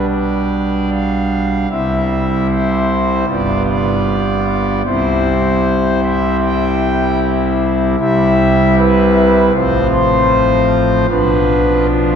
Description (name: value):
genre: classical, chorale-style piece for pipe organ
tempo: 76 BPM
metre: 4/4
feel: rubato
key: C major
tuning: A4 = 439 Hz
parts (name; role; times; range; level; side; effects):
- pipe organ, foundations; solo; 0.0-12.2 s; G1 to G5; -12 LUFS; equal; none
room: wet cathedral reverb, RT60 4.2 s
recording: recorded in a church or concert hall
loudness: -12 LUFS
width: side -7 dB against mid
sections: 0.0-12.2 A section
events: none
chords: 0.0 G/B; 1.7 C; 3.3 G7; 4.9 C; 9.5 F/A; 11.1 Bdim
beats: 0.12 0.92 | 1.71 2.50 3.29 4.07 | 4.86 5.65 6.43 7.22 | 8.00 8.78 9.55 10.32 | 11.10 11.89